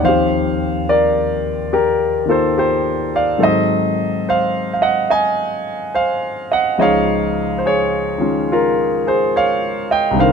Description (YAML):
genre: jazz ballad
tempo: 71 BPM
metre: 4/4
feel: swing 66% on 8ths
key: unclear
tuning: A4 = 442 Hz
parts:
  - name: warm concert grand piano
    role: solo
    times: 0.0-10.3 s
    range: C2 to Ab5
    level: -14 LUFS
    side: equal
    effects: none
room: light reverb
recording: close, detailed microphones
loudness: -15 LUFS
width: side -6 dB against mid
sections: 0.0-10.3 A section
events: none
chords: 0.0 Eb69; 3.4 Ab7b9; 6.8 Dbadd9